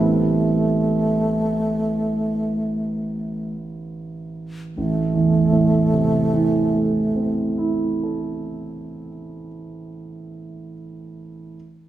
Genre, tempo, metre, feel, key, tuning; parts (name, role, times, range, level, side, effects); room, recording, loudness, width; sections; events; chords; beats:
classical, impressionist duo for alto flute and grand piano; 47-55 BPM; 4/4; rubato; A minor; A4 = 436 Hz
alto flute; melody; 0.0-7.9 s; A3; -22 LUFS; equal
dark concert grand piano; accompaniment; 0.0-11.6 s; A1 to A4; -22 LUFS; right 3 dB
wet recital hall reverb, RT60 1.4 s; recorded in a church or concert hall; -18 LUFS; side -13 dB against mid
0.0-4.8 A section; 4.8-9.3 B section
slowing down 0.0-4.8
0.0 Am9; 4.8 Am
1.14 2.32 3.54 | 4.78 5.93 7.06 8.16